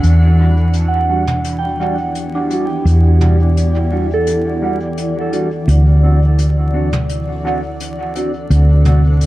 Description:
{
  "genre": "ambient dub",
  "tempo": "85 BPM",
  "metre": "4/4",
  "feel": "straight",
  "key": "E minor",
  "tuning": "A4 = 438 Hz",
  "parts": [
    { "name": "granular cloud pad", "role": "sustained chords", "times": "0.0-9.3 s", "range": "E3 to D5", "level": "-22 LUFS", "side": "equal", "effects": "built-in reverb" },
    { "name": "soft synth bell", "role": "arpeggios", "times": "0.0-9.3 s", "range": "D4 to G5", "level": "-22 LUFS", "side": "right 2 dB", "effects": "chorus, phaser, low-pass filter, dub echo" },
    { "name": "hollow-body short-scale fingered electric bass", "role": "bass", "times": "0.0-9.3 s", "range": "D2 to E2", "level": "-12 LUFS", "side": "equal", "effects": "none" },
    { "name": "jazz brush drum kit", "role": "drums", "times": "0.0-9.3 s", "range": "hi-hat, toms", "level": "-26 LUFS", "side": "equal", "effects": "low-pass filter on hats, low-pass filter on toms, low-pass filter on snare, low-pass filter on room, dub echo" },
    { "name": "mellow electric guitar", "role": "stabs", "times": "0.4-9.0 s", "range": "G3 to F#4", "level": "-23 LUFS", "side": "right 2 dB", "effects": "phaser, low-pass filter, dub echo" }
  ],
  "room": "light reverb, small room ambience",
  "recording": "vinyl crackle",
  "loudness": "-12 LUFS",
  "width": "side -16 dB against mid",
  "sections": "0.0-9.3 A section",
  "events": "none",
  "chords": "0.0 Em9; 5.7 D7",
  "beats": "| 0.03 0.74 1.44 2.15 | 2.85 3.56 4.27 4.97 | 5.68 6.38 7.09 7.80 | 8.50 9.21"
}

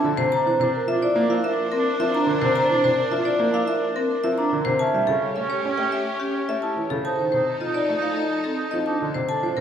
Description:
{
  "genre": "classical, minimalist pattern music",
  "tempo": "107 BPM",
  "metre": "4/4",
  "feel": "straight",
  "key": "unclear",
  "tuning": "A4 = 440 Hz",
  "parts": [
    { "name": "marimba with hard mallets", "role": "melody", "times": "0.0-9.6 s", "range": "G4 to Bb5", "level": "-24 LUFS", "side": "left 4 dB", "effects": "none" },
    { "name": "clear oboe", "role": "second line", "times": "0.0-9.5 s", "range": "C#4 to Eb4", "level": "-30 LUFS", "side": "right 3 dB", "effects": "none" },
    { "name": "clear baby grand piano", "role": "accompaniment", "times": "0.0-9.6 s", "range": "C3 to C#4", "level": "-28 LUFS", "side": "right 2 dB", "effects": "none" },
    { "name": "clear studio violin section", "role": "sustained chords", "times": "0.0-9.6 s", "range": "C#4 to C5", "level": "-32 LUFS", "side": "left 3 dB", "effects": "none" },
    { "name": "vibraphone with soft mallets", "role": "arpeggios", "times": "0.0-9.6 s", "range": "C4 to E5", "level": "-25 LUFS", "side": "right 4 dB", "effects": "none" }
  ],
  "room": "wet recital hall reverb, RT60 1.6 s",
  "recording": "recorded in a church or concert hall",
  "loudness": "-20 LUFS",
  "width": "side -8 dB against mid",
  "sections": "0.0-9.3 A section",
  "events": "none",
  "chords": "0.3 Bbadd9; 4.8 A7; 7.1 F7",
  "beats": "| 0.32 0.88 1.44 2.00 | 2.56 3.13 3.69 4.25 | 4.81 5.37 5.93 6.49 | 7.05 7.61 8.17 8.73 | 9.29"
}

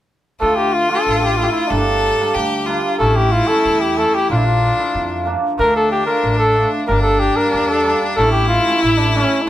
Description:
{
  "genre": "klezmer",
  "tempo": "93 BPM",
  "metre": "2/4",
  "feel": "straight",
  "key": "D harmonic minor",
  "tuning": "A4 = 439 Hz",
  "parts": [
    { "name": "warm cornet", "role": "melody", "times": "0.4-9.5 s", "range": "C#4 to Bb4", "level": "-17 LUFS", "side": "left 1 dB", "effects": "none" },
    { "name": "clear violin", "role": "second line", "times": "0.4-9.5 s", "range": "D4 to A4", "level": "-20 LUFS", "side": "left 2 dB", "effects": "none" },
    { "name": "cimbalom", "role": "accompaniment", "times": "0.4-9.5 s", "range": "E3 to F4", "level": "-22 LUFS", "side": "right 3 dB", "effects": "none" },
    { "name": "upright bass", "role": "bass", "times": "0.4-9.2 s", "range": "G1 to F2", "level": "-21 LUFS", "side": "equal", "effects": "none" }
  ],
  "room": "moderate studio ambience, RT60 0.5 s",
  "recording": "band playing live in one room",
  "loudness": "-14 LUFS",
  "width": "side -13 dB against mid",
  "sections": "0.4-9.5 A section",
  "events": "none",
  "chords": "0.4 Dm; 1.7 Gm; 3.0 A; 4.3 Bb; 5.6 Dm; 6.9 Gm; 8.2 A",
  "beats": "| 0.41 1.06 | 1.71 2.35 | 3.00 3.65 | 4.29 4.94 | 5.59 6.24 | 6.88 7.53 | 8.18 8.82 | 9.47"
}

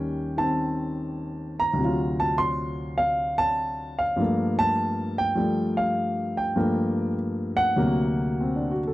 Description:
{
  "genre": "solo jazz",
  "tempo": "100 BPM",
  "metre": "4/4",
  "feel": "swing 69% on 8ths, rubato",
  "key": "G minor",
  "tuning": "A4 = 440 Hz",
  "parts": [
    { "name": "warm grand piano", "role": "solo", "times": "0.0-8.9 s", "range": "D2 to C6", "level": "-23 LUFS", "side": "equal", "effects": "none" }
  ],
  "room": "light reverb",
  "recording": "dry, close 1970s-style studio recording",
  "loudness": "-23 LUFS",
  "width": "side -16 dB against mid",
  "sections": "0.0-8.9 A section",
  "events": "none",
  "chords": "0.0 Eb7; 1.8 D7#9; 4.2 Gm9; 7.8 D7b13",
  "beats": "0.58 1.19 | 1.79 2.39 2.99 3.59 | 4.19 4.78 5.38 5.98 | 6.57 7.17 7.78 8.40"
}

